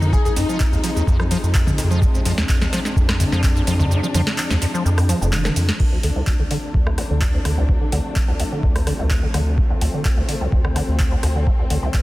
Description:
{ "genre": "acid house", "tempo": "127 BPM", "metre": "4/4", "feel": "straight", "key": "D minor pentatonic", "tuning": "A4 = 445 Hz", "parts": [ { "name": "dark studio string section", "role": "sustained chords", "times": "0.0-12.0 s", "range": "C3 to Eb4", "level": "-27 LUFS", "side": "left 2 dB", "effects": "sidechain pumping" }, { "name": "round analog bass", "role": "bass", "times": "0.0-11.8 s", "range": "F1 to F2", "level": "-20 LUFS", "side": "equal", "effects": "sidechain pumping" }, { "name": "booming analog drum machine", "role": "drums", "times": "0.0-12.0 s", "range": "crash cymbal, handclaps, hi-hat, rim click, shaker, snare drum, toms", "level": "-26 LUFS", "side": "equal", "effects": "none" }, { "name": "plucky unison lead", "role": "melody", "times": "0.1-1.0 s", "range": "Eb4 to Ab4", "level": "-28 LUFS", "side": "left 4 dB", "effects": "wide subtle chorus, tape echo" }, { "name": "electronic kick drum", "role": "drums", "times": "0.1-12.0 s", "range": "none", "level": "-20 LUFS", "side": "equal", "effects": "overdrive" }, { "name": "acid bass, square", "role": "riff", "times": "0.3-12.0 s", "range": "C2 to F3", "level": "-24 LUFS", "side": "equal", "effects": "overdrive, analog chorus, sidechain pumping, tape echo" } ], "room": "light reverb, digital ambience", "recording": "dense, heavily limited modern master", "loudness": "-16 LUFS", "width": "side -18 dB against mid", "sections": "0.0-5.8 A section; 5.8-12.0 B section", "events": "drop 0.0-5.8; kick drops out 3.9-5.8; drum fill 5.3-5.8; filter sweep on acid bass 5.8-12.0", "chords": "0.0 Fm7; 5.8 Dm7" }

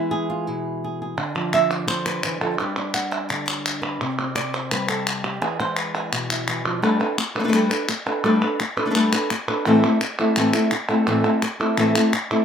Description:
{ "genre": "flamenco", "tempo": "170 BPM", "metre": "4/4", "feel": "straight", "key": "unclear", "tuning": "A4 = 440 Hz", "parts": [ { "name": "flamenco guitar", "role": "melody", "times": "0.0-12.4 s", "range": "A2 to F#5", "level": "-21 LUFS", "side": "equal", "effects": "none" }, { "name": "palmas hand claps", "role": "percussion", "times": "1.2-12.4 s", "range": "none", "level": "-24 LUFS", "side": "equal", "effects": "none" } ], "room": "light reverb", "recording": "close, detailed microphones", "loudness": "-19 LUFS", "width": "side -8 dB against mid", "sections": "0.0-6.8 A section; 6.8-12.4 B section", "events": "none", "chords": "0.0 E; 1.2 Dm; 2.6 G; 4.0 C5; 5.4 E; 6.8 Gadd9; 9.7 Am" }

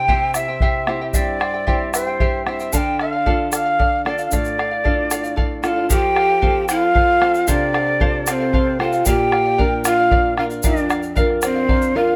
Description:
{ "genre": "andean folk, Andean ensemble", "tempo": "76 BPM (dotted quarters)", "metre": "6/8", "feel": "straight", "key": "unclear", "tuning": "A4 = 440 Hz", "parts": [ { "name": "mellow quena", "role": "melody", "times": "0.0-12.2 s", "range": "C5 to A5", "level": "-22 LUFS", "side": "equal", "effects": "tape echo" }, { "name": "charango", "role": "accompaniment", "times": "0.0-12.2 s", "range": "E4 to G5", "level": "-29 LUFS", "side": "equal", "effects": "none" }, { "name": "flamenco guitar", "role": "accompaniment", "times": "0.0-12.2 s", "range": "F2 to Bb4", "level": "-27 LUFS", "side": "equal", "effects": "none" }, { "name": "bombo", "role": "percussion", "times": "0.1-11.8 s", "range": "none", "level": "-23 LUFS", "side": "equal", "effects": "none" }, { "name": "egg shaker", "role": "percussion", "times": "0.3-11.9 s", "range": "none", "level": "-29 LUFS", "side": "equal", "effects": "none" }, { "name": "breathy large pan pipes", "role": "second line", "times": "5.6-12.2 s", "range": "C4 to G4", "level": "-23 LUFS", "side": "equal", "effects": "none" } ], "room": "light reverb", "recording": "close, detailed microphones", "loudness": "-18 LUFS", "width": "mono", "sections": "0.0-5.9 A section; 5.9-12.2 A section", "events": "none", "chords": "0.0 C; 2.7 Dm; 5.9 F; 9.1 Bb" }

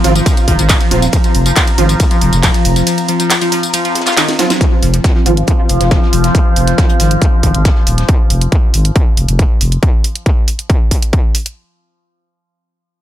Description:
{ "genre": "driving peak-time techno", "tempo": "138 BPM", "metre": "4/4", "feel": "straight", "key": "F minor", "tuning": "A4 = 436 Hz", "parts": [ { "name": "rave stab", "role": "stabs", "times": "0.0-5.3 s", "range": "F3 to F4", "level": "-20 LUFS", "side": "right 4 dB", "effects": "chorus, built-in reverb, sidechain pumping, tape echo" }, { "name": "growling FM bass", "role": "bass", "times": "0.0-9.8 s", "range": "Eb1 to Ab1", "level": "-14 LUFS", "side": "equal", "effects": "sidechain pumping" }, { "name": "compact cocktail drum kit", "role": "drums", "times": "0.0-8.1 s", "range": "hi-hat, shaker, snare drum", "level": "-26 LUFS", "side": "left 3 dB", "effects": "none" }, { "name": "techno drum kit", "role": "drums", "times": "0.0-11.5 s", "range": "handclaps, hi-hat, ride cymbal, snare drum, tambourine", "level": "-17 LUFS", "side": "right 1 dB", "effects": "overdrive" }, { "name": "airy breathy pad", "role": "texture", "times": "0.0-9.8 s", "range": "C4 to C6", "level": "-21 LUFS", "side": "equal", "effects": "chorus, sidechain pumping" }, { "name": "overdriven synth lead", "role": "riff", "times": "0.2-6.3 s", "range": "Eb3 to F4", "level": "-18 LUFS", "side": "left 1 dB", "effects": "phaser, sidechain pumping, ping-pong delay" }, { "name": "electronic kick drum", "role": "drums", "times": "0.3-11.2 s", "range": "none", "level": "-12 LUFS", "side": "equal", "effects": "distortion, overdrive" }, { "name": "overtone-sweeping drone", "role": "drone", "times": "5.2-8.1 s", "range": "F3", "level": "-22 LUFS", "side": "left 2 dB", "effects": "chorus, built-in reverb, sidechain pumping" } ], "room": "light reverb", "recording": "none", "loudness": "-10 LUFS", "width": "side -12 dB against mid", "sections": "0.0-4.6 A section; 4.6-11.6 B section", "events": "drop 0.0-4.6; drum fill 4.2-4.6; fade-out on analog synth pad 4.6-9.8; filter sweep on analog synth lead 4.6-6.3; filter sweep on synth stab 4.6-6.3", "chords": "0.0 F5" }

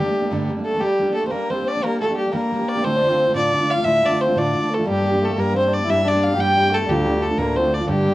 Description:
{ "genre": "celtic folk, Celtic jig", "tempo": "119 BPM (dotted quarters)", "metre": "6/8", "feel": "straight", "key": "G dorian", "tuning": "A4 = 440 Hz", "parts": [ { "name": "rich fiddle", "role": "melody", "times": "0.0-8.1 s", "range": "G4 to G5", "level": "-20 LUFS", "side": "equal", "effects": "none" }, { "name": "mellow tenor saxophone", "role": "second line", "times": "0.0-8.1 s", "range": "G3 to G4", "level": "-24 LUFS", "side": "left 2 dB", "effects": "slapback echo" }, { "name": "picked steel-string acoustic guitar", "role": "accompaniment", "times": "0.0-8.1 s", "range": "D2 to G4", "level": "-23 LUFS", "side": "right 2 dB", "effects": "none" }, { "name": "rich cello", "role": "bass", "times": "4.9-8.1 s", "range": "D2 to G2", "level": "-23 LUFS", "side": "equal", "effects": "none" } ], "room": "moderate studio reverb, RT60 0.6 s", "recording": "worn, warbling old tape, cassette tape, warbly pitch drift", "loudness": "-17 LUFS", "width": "side -16 dB against mid", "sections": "0.8-8.1 A section", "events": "none", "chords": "0.0 Gmadd9; 0.8 Gm; 2.8 Dm; 4.9 Gm; 6.9 Dm" }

